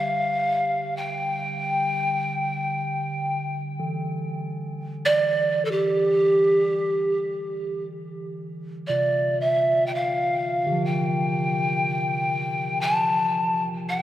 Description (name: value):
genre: world meditative, free-time meditation music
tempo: free time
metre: none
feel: none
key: unclear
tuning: A4 = 440 Hz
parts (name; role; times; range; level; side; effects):
- breathy mellow pan flute; melody; 0.0-14.0 s; G4 to A5; -22 LUFS; equal; dub echo
- bronze singing bowl; texture; 0.0-14.0 s; C3 to G3; -30 LUFS; equal; none
room: wet spring reverb, RT60 2.6 s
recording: echo-heavy mix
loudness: -22 LUFS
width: side -13 dB against mid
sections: 0.0-8.0 A section; 8.0-14.0 A section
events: none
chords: none